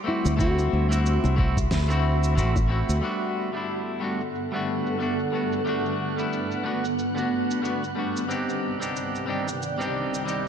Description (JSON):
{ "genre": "sunset chillout", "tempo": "91 BPM", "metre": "4/4", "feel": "swing 57% on 16ths", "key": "G major", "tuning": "A4 = 440 Hz", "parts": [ { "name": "nylon-string guitar", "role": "melody", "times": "0.0-2.3 s", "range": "E4 to F#4", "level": "-31 LUFS", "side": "left 1 dB", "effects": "ping-pong delay, shimmer reverb" }, { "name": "clean electric guitar", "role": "accompaniment", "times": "0.0-10.5 s", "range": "G3 to G4", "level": "-28 LUFS", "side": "left 1 dB", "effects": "auto-pan, ping-pong delay, shimmer reverb" }, { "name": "shimmering ambient pad", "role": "sustained chords", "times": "0.0-10.5 s", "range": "C2 to C6", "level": "-28 LUFS", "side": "right 1 dB", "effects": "chorus, built-in reverb, shimmer reverb" }, { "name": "bongos", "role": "percussion", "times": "0.2-2.7 s", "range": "none", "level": "-32 LUFS", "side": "left 4 dB", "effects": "none" }, { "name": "modern bright fingered electric bass", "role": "bass", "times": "0.3-3.0 s", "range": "A1 to D2", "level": "-22 LUFS", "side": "equal", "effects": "none" }, { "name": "electronic shaker and snare drum", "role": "drums", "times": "0.3-10.4 s", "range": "none", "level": "-36 LUFS", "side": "right 1 dB", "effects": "low-pass filter on perc, studio reverb, low-pass filter on snare" }, { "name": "electronic kick drum", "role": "drums", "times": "0.4-2.7 s", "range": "none", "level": "-25 LUFS", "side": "equal", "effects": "studio reverb" }, { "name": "wind-like tuned noise texture", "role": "texture", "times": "4.2-10.5 s", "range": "F#6", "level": "-40 LUFS", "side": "right 2 dB", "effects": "built-in reverb, shimmer reverb" } ], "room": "moderate lush hall reverb, RT60 2.1 s", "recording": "dark, warm production", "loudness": "-23 LUFS", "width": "side -8 dB against mid", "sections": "0.0-3.0 A section; 3.0-10.5 B section", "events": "none", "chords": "0.1 D13; 3.0 Gmaj7; 8.3 Cmadd9" }